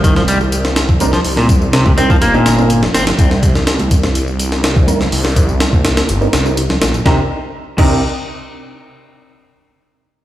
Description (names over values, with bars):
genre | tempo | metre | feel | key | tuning
breakbeat, breaks | 124 BPM | 4/4 | straight | C minor | A4 = 440 Hz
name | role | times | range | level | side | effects
clean electric guitar | riff | 0.0-3.0, 7.1-8.0 s | Bb2 to C4 | -16 LUFS | equal | tube saturation, vintage 12-bit sampler grit, ping-pong delay
phased detuned saw bass | bass | 0.0-8.0 s | G1 to C2 | -16 LUFS | equal | phaser, tube saturation
breakbeat sampler-style drum kit | drums | 0.0-7.9 s | crash cymbal, hi-hat, kick drum, snare drum | -14 LUFS | equal | none
tambourine | drums | 0.0-7.0 s | none | -29 LUFS | left 4 dB | none
impact | sound effects | 0.0-1.3 s | none | -30 LUFS | right 1 dB | none
bongos and congas | percussion | 0.2-7.0 s | none | -25 LUFS | right 2 dB | none
orchestra-hit-like synth stab | stabs | 1.0-8.0 s | C4 to Bb4 | -21 LUFS | right 3 dB | built-in reverb, ping-pong delay
room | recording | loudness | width
light reverb | played on a big sound system in a bare room, stone room reverb | -11 LUFS | side -14 dB against mid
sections
0.0-7.1 A section; 7.1-9.0 B section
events
impact 0.0-1.3; filter sweep on synth stab 0.0-7.1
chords
0.0 Cm9